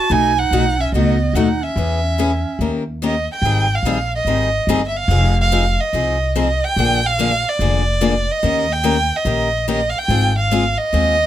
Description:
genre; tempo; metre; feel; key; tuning
acoustic string swing (jazz manouche); 144 BPM; 4/4; swing 63% on 8ths; Ab major from 3.4 s; A4 = 440 Hz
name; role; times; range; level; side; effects
warm violin; melody; 0.0-11.3 s; D5 to A5; -19 LUFS; right 2 dB; none
breathy clarinet; second line; 0.0-3.0 s; B3 to F#4; -24 LUFS; right 6 dB; none
picked steel-string acoustic guitar; accompaniment; 0.1-11.1 s; B2 to A#4; -20 LUFS; left 5 dB; none
upright bass; bass; 0.1-11.3 s; F1 to E2; -19 LUFS; equal; none
room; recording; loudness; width
light reverb; close, detailed microphones; -15 LUFS; side -12 dB against mid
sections
0.0-3.4 A section; 3.4-11.3 B section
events
none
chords
0.1 B7; 1.8 E6; 2.6 D#7; 3.4 Abmaj7; 5.1 Fm7; 6.8 Bb7; 8.4 Eb7; 10.1 Ab6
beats
| 0.10 0.52 0.94 1.35 | 1.77 2.19 2.60 3.02 | 3.44 3.86 4.27 4.69 | 5.11 5.52 5.94 6.35 | 6.77 7.19 7.60 8.02 | 8.43 8.85 9.27 9.68 | 10.10 10.51 10.93

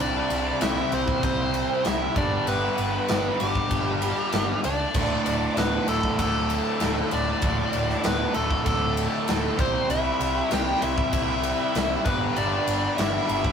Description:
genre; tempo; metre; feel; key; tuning
hard rock; 97 BPM; 4/4; straight; D mixolydian; A4 = 440 Hz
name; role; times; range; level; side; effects
nasal lead guitar with a parked wah; melody; 0.0-13.5 s; G4 to G5; -30 LUFS; left 3 dB; overdrive
octave-fuzz lead guitar; second line; 0.0-13.5 s; G3 to G4; -30 LUFS; right 3 dB; distortion
distorted electric guitar; riff; 0.0-13.5 s; D2 to C5; -33 LUFS; equal; overdrive
overdriven electric guitar; riff; 0.0-13.5 s; D2 to C4; -30 LUFS; left 3 dB; none
overdriven electric guitar; riff; 0.0-13.5 s; D2 to C4; -32 LUFS; right 7 dB; phaser
picked electric bass; bass; 0.0-13.5 s; D1 to C#2; -31 LUFS; equal; none
big rock drum kit; drums; 0.3-13.5 s; crash cymbal, kick drum, ride cymbal, snare drum; -27 LUFS; left 1 dB; none
room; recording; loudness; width
moderate small room reverb, RT60 0.5 s; rough rehearsal-room recording; -22 LUFS; side -7 dB against mid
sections
0.0-13.5 A section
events
none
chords
0.0 C; 2.2 G; 4.9 D; 9.6 C; 12.1 G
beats
0.61 1.23 1.85 | 2.47 3.09 3.71 4.33 | 4.95 5.57 6.19 6.80 | 7.42 8.04 8.66 9.28 | 9.90 10.52 11.13 11.75 | 12.37 12.99

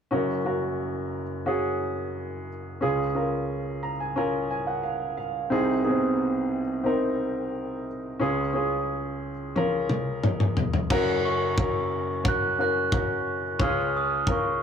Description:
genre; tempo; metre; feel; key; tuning
piano-driven pop; 89 BPM; 4/4; straight; unclear; A4 = 440 Hz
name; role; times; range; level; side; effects
clear baby grand piano; accompaniment; 0.1-14.6 s; Gb1 to Bb5; -25 LUFS; equal; none
modern studio drum kit; drums; 9.6-14.4 s; crash cymbal, kick drum, toms; -26 LUFS; left 1 dB; none
glockenspiel with rubber mallets; melody; 11.3-14.6 s; Db6 to Gb6; -27 LUFS; right 4 dB; none
room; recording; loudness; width
moderate small room ambience, RT60 0.5 s; rough rehearsal-room recording; -24 LUFS; side -7 dB against mid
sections
0.1-10.9 A section; 10.9-14.6 B section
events
grand piano fill 3.5-5.5; drum fill 9.6-10.9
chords
0.1 Gb; 2.8 Db; 5.5 Ab/C; 8.2 Db; 10.9 Gb; 13.6 Db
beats
| 0.11 0.79 1.46 2.14 | 2.81 3.48 4.16 4.83 | 5.51 6.18 6.86 7.53 | 8.21 8.88 9.55 10.23 | 10.90 11.58 12.25 12.92 | 13.60 14.27

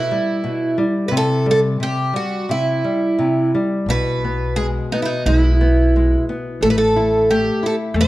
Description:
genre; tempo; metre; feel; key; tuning
fado-style ballad; 85-92 BPM; 4/4; rubato; E minor; A4 = 441 Hz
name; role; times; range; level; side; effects
picked twelve-string acoustic guitar; melody; 0.0-8.1 s; D#4 to C#5; -18 LUFS; right 2 dB; none
nylon-string guitar; accompaniment; 0.0-8.1 s; B2 to E4; -21 LUFS; left 2 dB; none
upright bass; bass; 3.9-8.1 s; A1 to E2; -18 LUFS; equal; none
room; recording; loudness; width
moderate recital hall reverb, RT60 1.5 s; dark, warm production; -16 LUFS; side -16 dB against mid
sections
0.0-8.1 A section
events
none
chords
0.0 Em/B; 1.1 C; 3.9 E/B; 6.6 A5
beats
0.45 | 1.11 1.78 2.46 3.16 | 3.87 4.57 5.26 5.94 | 6.62 7.29 7.96

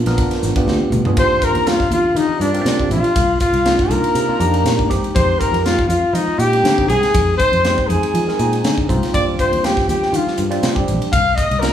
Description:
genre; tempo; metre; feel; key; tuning
electric jazz fusion; 121 BPM; 4/4; swing 53% on 16ths; Eb major; A4 = 440 Hz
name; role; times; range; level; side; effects
barky tine electric piano; accompaniment; 0.0-11.7 s; G3 to Bb4; -22 LUFS; right 1 dB; phaser
fingered electric bass; bass; 0.0-11.7 s; Ab1 to F3; -21 LUFS; equal; none
crisp fusion drum kit; drums; 0.1-11.7 s; hi-hat, kick drum, ride cymbal, snare drum, toms; -21 LUFS; equal; none
mellow trumpet; melody; 1.2-11.7 s; D4 to F5; -17 LUFS; left 1 dB; none
breathy bright jazz flute; second line; 1.2-11.7 s; D5 to F6; -26 LUFS; right 1 dB; none
room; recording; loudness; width
moderate large studio reverb, RT60 1.1 s; band playing live in one room, small room ambience; -14 LUFS; side -10 dB against mid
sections
0.0-1.2 A section; 1.2-11.7 B section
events
drum fill 0.7-1.2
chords
0.0 Bb7b9; 1.2 Ebmaj13; 3.2 Cm11; 4.9 Fm9; 9.1 Ebmaj13; 11.1 Cm11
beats
0.18 0.67 | 1.17 1.67 2.17 2.66 | 3.16 3.66 4.16 4.65 | 5.15 5.65 6.15 6.64 | 7.14 7.64 8.14 8.64 | 9.13 9.63 10.13 10.63 | 11.12 11.62

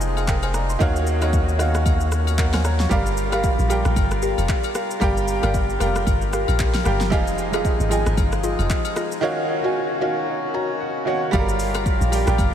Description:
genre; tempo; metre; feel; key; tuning
amapiano; 114 BPM; 4/4; swing 58% on 16ths; G phrygian; A4 = 440 Hz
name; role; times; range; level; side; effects
bright baby grand piano; accompaniment; 0.0-12.5 s; Eb3 to Db6; -25 LUFS; right 3 dB; none
accordion; sustained chords; 0.0-12.5 s; Eb3 to Bb4; -28 LUFS; left 3 dB; stereo widening, sidechain pumping
punchy sub bass; bass; 0.0-2.9 s; F1 to Eb2; -21 LUFS; equal; none
deep house drum kit; drums; 0.0-12.5 s; handclaps, hi-hat, kick drum, rim click, shaker, snare drum; -24 LUFS; equal; none
agogo bells and woodblock; percussion; 0.2-12.5 s; none; -35 LUFS; left 11 dB; none
mallet-like synth pluck; stabs; 2.9-11.2 s; F4 to F5; -28 LUFS; left 1 dB; chorus, phaser, diffuse ambient delay
deep log drum bass; bass; 2.9-12.5 s; F1 to Bb1; -23 LUFS; equal; none
room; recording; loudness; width
moderate huge ambient reverb, RT60 6.0 s; dreamy mix soaked in reverb; -18 LUFS; side -9 dB against mid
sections
0.0-11.3 A section; 11.3-12.5 B section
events
grand piano fill 10.3-11.3; drop 11.3-12.5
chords
0.0 Fm7; 0.8 Ebm7; 2.9 Gm7; 7.1 Fm7; 9.2 Ebm7; 11.3 Gm7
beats
0.28 | 0.81 1.33 1.86 2.38 | 2.91 3.44 3.96 4.49 | 5.02 5.54 6.07 6.59 | 7.12 7.65 8.17 8.70 | 9.23 9.75 10.28 10.80 | 11.33 11.86 12.38

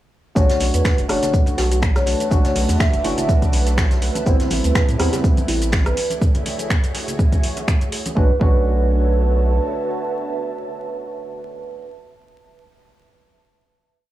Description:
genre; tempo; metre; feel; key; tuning
deep house; 123 BPM; 4/4; swing 55% on 16ths; B minor; A4 = 440 Hz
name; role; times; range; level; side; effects
vibraphone with soft mallets; melody; 0.4-11.9 s; B4 to E5; -26 LUFS; right 1 dB; vintage 12-bit sampler grit, tape echo
soft string machine; sustained chords; 0.4-11.6 s; D3 to D6; -30 LUFS; equal; phaser, ensemble chorus, sidechain pumping
percussive organ stab; stabs; 0.4-11.9 s; G3 to F#4; -26 LUFS; equal; lush chorus, sidechain pumping, analog delay
round analog bass; bass; 0.4-9.6 s; F#1 to A2; -19 LUFS; equal; sidechain pumping
deep house drum kit; drums; 0.4-8.1 s; finger snaps, hi-hat, rim click, shaker; -26 LUFS; equal; none
electronic kick drum; drums; 0.4-8.6 s; none; -17 LUFS; equal; none
jazz brush drum kit; drums; 0.4-6.1 s; hi-hat, shaker, snare drum; -33 LUFS; right 1 dB; high-pass filter on hats, high-pass filter on snare, high-pass filter on perc, high-pass filter on room
ethereal airy pad; texture; 1.7-11.8 s; A4 to A5; -32 LUFS; right 3 dB; ensemble chorus, built-in reverb, sidechain pumping
congas; percussion; 0.5-8.1 s; none; -32 LUFS; right 2 dB; none
bell-like FM electric piano; melody; 1.1-5.7 s; E4 to A4; -28 LUFS; right 1 dB; chorus, phaser, tape echo
room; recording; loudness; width
small room ambience; dry, gritty hardware recording, vinyl crackle, small room reverb; -16 LUFS; side -14 dB against mid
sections
0.4-8.2 drop; 8.2-12.1 final chord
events
drop 0.4-8.2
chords
0.4 Bm9; 4.3 Am9; 6.0 F#m9; 8.2 Bm9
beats
| 0.36 0.85 1.34 1.82 | 2.31 2.80 3.29 3.78 | 4.26 4.75 5.24 5.73 | 6.21 6.70 7.19 7.68 | 8.17 8.65 9.14 9.63 | 10.12 10.61 11.09 11.58

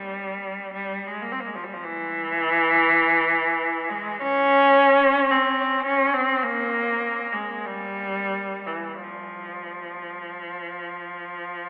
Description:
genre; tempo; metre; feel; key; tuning
classical, free, expressive piece for unaccompanied cello; 40-57 BPM; 4/4; rubato; F minor; A4 = 442 Hz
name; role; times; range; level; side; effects
rich cello; solo; 0.0-11.7 s; E3 to Db4; -20 LUFS; equal; none
room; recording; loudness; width
wet cathedral reverb, RT60 4.9 s; telephone sound; -19 LUFS; side -29 dB against mid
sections
0.0-11.7 A section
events
none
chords
none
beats
0.73 1.82 2.92 | 4.21 5.31 6.43 7.65 | 9.03 10.47

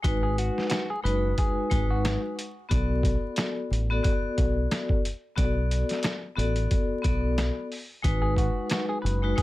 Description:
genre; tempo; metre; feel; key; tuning
hip hop, boom-bap hip-hop; 90 BPM; 4/4; swing 59% on 16ths; unclear; A4 = 440 Hz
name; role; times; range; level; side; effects
vibraphone with medium hard mallets; accompaniment; 0.0-9.4 s; G#3 to D5; -29 LUFS; left 2 dB; high-pass filter, low-pass filter
deep dub fingered electric bass; bass; 0.0-9.3 s; F#1 to B1; -26 LUFS; equal; none
trip hop sampler-style drum kit; drums; 0.0-9.4 s; hi-hat, kick drum, snare drum; -27 LUFS; equal; none
semi-hollow electric guitar; melody; 0.2-2.2, 8.2-9.4 s; F#4 to B4; -34 LUFS; equal; high-pass filter, low-pass filter, digital delay
room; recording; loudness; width
light reverb; vinyl crackle; -24 LUFS; side -17 dB against mid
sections
0.0-9.4 A section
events
none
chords
0.0 G#m7; 2.7 Bm7; 8.0 G#m7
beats
| 0.04 0.71 1.37 2.04 | 2.71 3.37 4.04 4.71 | 5.37 6.04 6.71 7.37 | 8.04 8.71 9.37

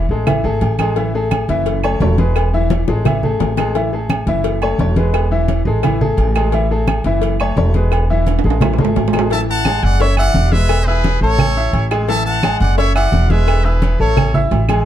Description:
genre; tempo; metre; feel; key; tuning
latin, salsa; 173 BPM; 4/4; straight; A major; A4 = 442 Hz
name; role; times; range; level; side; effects
clear baby grand piano; accompaniment; 0.0-14.8 s; E3 to E6; -20 LUFS; left 2 dB; none
upright bass; bass; 0.0-14.8 s; E1 to A1; -16 LUFS; equal; none
congas; percussion; 0.1-14.8 s; none; -20 LUFS; equal; none
agogo bells and timbales; percussion; 0.3-14.8 s; none; -24 LUFS; right 5 dB; none
claves; percussion; 0.3-14.8 s; none; -29 LUFS; right 9 dB; none
cowbell and bongos; percussion; 0.3-14.8 s; none; -26 LUFS; left 6 dB; none
brilliant trumpet section; melody; 9.3-14.4 s; G#4 to A5; -20 LUFS; equal; none
room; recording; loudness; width
light reverb; dark, warm production; -13 LUFS; side -11 dB against mid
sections
0.0-9.3 A section; 9.3-14.8 B section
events
drum fill 2.7-3.7, 8.3-9.3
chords
0.3 A5; 1.7 F#m7; 2.4 E; 3.1 A5; 4.4 F#m7; 5.1 E; 5.8 A5; 7.2 F#m7; 7.9 E; 8.6 A5; 10.0 F#5; 10.7 E; 11.4 Amaj7; 12.8 F#5; 13.5 E; 14.2 A5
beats
0.27 0.62 | 0.97 1.32 1.66 2.01 | 2.36 2.71 3.05 3.40 | 3.75 4.10 4.44 4.79 | 5.14 5.49 5.83 6.18 | 6.53 6.88 7.22 7.57 | 7.92 8.27 8.61 8.96 | 9.31 9.65 10.00 10.35 | 10.70 11.04 11.39 11.74 | 12.09 12.43 12.78 13.13 | 13.48 13.82 14.17 14.52

